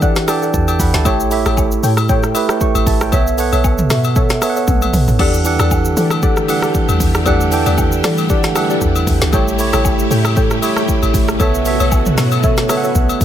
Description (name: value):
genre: amapiano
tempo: 116 BPM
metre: 4/4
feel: swing 55% on 16ths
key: E dorian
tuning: A4 = 438 Hz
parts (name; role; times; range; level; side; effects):
- tine electric piano; accompaniment; 0.0-13.2 s; E3 to C#6; -18 LUFS; right 5 dB; none
- deep mellow chord stab; stabs; 0.0-12.9 s; G4 to G5; -22 LUFS; left 2 dB; chorus, tape echo
- deep log drum bass; bass; 0.0-13.2 s; A1 to E3; -18 LUFS; left 1 dB; none
- deep house drum kit; drums; 0.0-13.2 s; crash cymbal, hi-hat, kick drum, rim click, shaker, snare drum, toms; -17 LUFS; equal; none
- agogo bells and woodblock; percussion; 0.3-13.2 s; none; -25 LUFS; left 9 dB; none
- string machine, full ensemble; sustained chords; 5.2-13.2 s; C#3 to G4; -22 LUFS; left 2 dB; ensemble chorus, sidechain pumping
room: digital ambience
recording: none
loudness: -12 LUFS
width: side -10 dB against mid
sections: 0.0-13.2 A section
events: tine electric piano fill 0.0-1.1; drum fill 4.7-5.2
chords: 0.0 Em11; 1.1 A7; 3.1 B9sus4; 5.2 Em11; 9.3 A7; 11.4 B9sus4